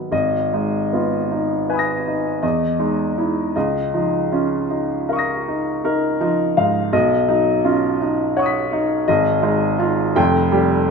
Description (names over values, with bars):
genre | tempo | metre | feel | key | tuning
classical, impressionist solo piano | 46-56 BPM (dotted quarters) | 9/8 | rubato | G# dorian | A4 = 440 Hz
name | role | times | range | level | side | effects
warm baby grand piano | solo | 0.0-10.9 s | F1 to B6 | -17 LUFS | equal | none
room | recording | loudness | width
moderate recital hall reverb, RT60 1.6 s | minimal, uncompressed stereo recording | -17 LUFS | side -5 dB against mid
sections
0.1-10.9 A section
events
none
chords
0.1 G#madd9; 2.4 Emaj7; 3.5 C#69; 6.9 Badd9; 9.1 G#5; 10.2 Fsus2